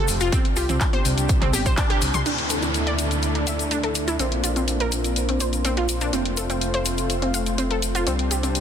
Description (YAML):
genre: progressive house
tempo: 124 BPM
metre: 4/4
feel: straight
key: D minor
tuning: A4 = 440 Hz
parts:
  - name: wide unison pluck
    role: melody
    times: 0.0-2.2 s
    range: F4 to G4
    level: -36 LUFS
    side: left 1 dB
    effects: none
  - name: lush unison pad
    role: sustained chords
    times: 0.0-8.6 s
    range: C3 to A4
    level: -30 LUFS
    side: right 1 dB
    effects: chorus, sidechain pumping
  - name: analog pluck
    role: arpeggios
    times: 0.0-8.5 s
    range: C4 to C6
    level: -26 LUFS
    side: right 1 dB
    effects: chorus, cassette tape, sidechain pumping, tape echo
  - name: dark detuned saw bass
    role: bass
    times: 0.1-8.6 s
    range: F1 to D2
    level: -26 LUFS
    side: equal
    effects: sidechain pumping
  - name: house drum kit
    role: drums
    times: 0.1-8.6 s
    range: crash cymbal, handclaps, hi-hat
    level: -28 LUFS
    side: left 1 dB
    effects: sidechain pumping on hats, studio ambience, sidechain pumping on cymbals
  - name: tube shaker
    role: percussion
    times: 0.1-8.6 s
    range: none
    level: -32 LUFS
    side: left 6 dB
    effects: none
  - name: electronic kick drum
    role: drums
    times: 0.3-1.9 s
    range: none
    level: -22 LUFS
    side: equal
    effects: overdrive, studio ambience
  - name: electronic congas and toms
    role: percussion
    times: 0.3-2.2 s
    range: none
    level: -32 LUFS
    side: left 3 dB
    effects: sidechain pumping on perc, studio ambience, sidechain pumping on toms
  - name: soft supersaw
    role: stabs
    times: 2.3-8.6 s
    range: G3 to D5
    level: -30 LUFS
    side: left 3 dB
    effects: cassette tape, sidechain pumping, low-pass filter, tape echo
  - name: downlifter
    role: sound effects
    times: 2.3-6.1 s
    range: none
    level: -33 LUFS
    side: equal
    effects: none
room: light reverb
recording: dense, heavily limited modern master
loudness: -20 LUFS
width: side -8 dB against mid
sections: 0.0-2.3 A section; 2.3-8.6 B section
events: band accent 1.8; filter sweep on supersaw synth 2.3-8.6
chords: 0.3 Csus2; 2.3 Dsus2; 4.2 Bbadd9; 6.1 F; 8.1 Csus2